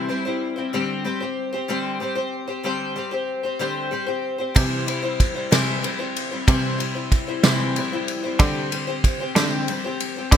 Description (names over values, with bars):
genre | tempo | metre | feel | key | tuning
indie folk with a building arrangement | 63 BPM (dotted quarters) | 6/8 | straight | C major | A4 = 440 Hz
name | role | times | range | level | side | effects
picked steel-string acoustic guitar | accompaniment | 0.0-10.4 s | C3 to C5 | -24 LUFS | left 3 dB | lush chorus
bright cello | bass | 4.6-10.4 s | C3 to D3 | -25 LUFS | right 1 dB | none
unplugged drum kit | drums | 4.6-10.4 s | kick drum, ride cymbal, snare drum | -21 LUFS | right 1 dB | gated reverb
room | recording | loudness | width
light reverb, studio ambience | bright 1980s-style digital production | -21 LUFS | side -9 dB against mid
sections
0.0-10.4 A section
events
none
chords
0.0 C; 0.7 Gsus4/D; 4.6 C; 8.4 Gsus4/D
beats
| 0.73 1.69 | 2.65 3.60 | 4.56 5.52 | 6.48 7.44 | 8.39 9.36 | 10.32